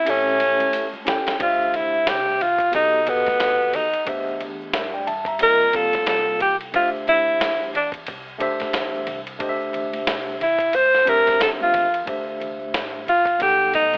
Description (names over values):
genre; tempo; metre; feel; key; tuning
hip hop, jazz-hop; 90 BPM; 4/4; swing 60% on 16ths; D minor; A4 = 440 Hz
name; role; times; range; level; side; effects
breathy alto saxophone; melody; 0.0-14.0 s; B3 to C5; -20 LUFS; equal; none
vibraphone with soft mallets; second line; 0.0-1.1 s; A3; -44 LUFS; equal; none
tine electric piano; accompaniment; 0.0-14.0 s; G3 to Bb5; -29 LUFS; equal; medium tremolo
dusty soul sampler-style drum kit; drums; 0.1-14.0 s; hi-hat, kick drum, ride cymbal, snare drum; -31 LUFS; equal; none
egg shaker and congas; percussion; 0.1-14.0 s; none; -48 LUFS; equal; none
upright bass; bass; 1.4-14.0 s; A1 to G2; -44 LUFS; equal; none
room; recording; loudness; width
light reverb, small room ambience; telephone sound; -21 LUFS; mono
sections
0.0-1.4 A section; 1.4-12.1 B section; 12.1-14.0 C section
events
break 0.0-1.4; drum fill 0.1-1.4; alto saxophone solo 1.4-12.1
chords
0.1 A7; 1.4 Dsus2; 2.7 B7b13; 4.1 C13/E; 5.4 Ebadd9; 6.7 Dsus2; 13.4 B7b13